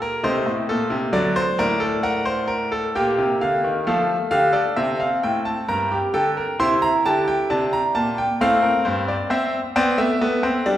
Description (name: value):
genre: classical, baroque-style 4-part fugue for grand piano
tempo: 66 BPM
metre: 3/4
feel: straight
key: G minor, F major from 3.9 s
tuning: A4 = 440 Hz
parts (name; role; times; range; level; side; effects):
- bright concert grand piano; solo; 0.0-10.8 s; G2 to C6; -18 LUFS; equal; none
room: wet recital hall reverb, RT60 1.8 s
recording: heard from further back in the room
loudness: -18 LUFS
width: side -12 dB against mid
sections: 0.0-3.9 A section; 3.9-10.8 B section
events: none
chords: 0.2 Adim; 1.1 D7; 2.9 Gm/Bb; 3.9 F; 5.7 Gm; 6.6 C7; 8.4 F/A; 9.3 C